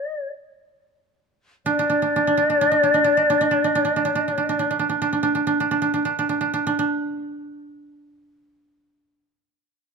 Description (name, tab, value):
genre	japanese traditional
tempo	43 BPM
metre	4/4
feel	rubato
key	unclear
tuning	A4 = 440 Hz
part	shakuhachi	melody	0.0-4.7 s	D5	-20 LUFS	left 2 dB	none
part	koto	second line	0.0-9.2 s	D4	-21 LUFS	right 4 dB	none
room	light reverb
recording	close, detailed microphones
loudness	-18 LUFS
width	side -4 dB against mid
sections	0.0-1.7 A section; 1.7-7.3 B section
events	slowing down 0.0-1.7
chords	none